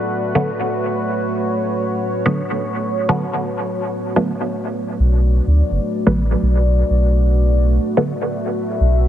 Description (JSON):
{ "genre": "dub techno", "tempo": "126 BPM", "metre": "4/4", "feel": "straight", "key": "B minor", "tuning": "A4 = 440 Hz", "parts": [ { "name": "deep dark ambient pad", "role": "sustained chords", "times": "0.0-9.1 s", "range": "A3 to E5", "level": "-21 LUFS", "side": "equal", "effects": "chorus, built-in reverb" }, { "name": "filtered dub chord stab", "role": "stabs", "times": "0.4-8.1 s", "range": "D3 to B3", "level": "-20 LUFS", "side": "right 1 dB", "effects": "chorus, phaser, cassette tape, dub echo" }, { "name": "warm sub bass", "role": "bass", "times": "5.0-9.1 s", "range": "F#1 to D2", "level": "-14 LUFS", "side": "equal", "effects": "none" } ], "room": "light reverb", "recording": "heavily compressed radio sound, multiband compression, low-pass filter", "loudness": "-16 LUFS", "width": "side -11 dB against mid", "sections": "0.0-3.8 A section; 3.8-9.1 B section", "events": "none", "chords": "0.0 B7(no3); 3.8 Bm7" }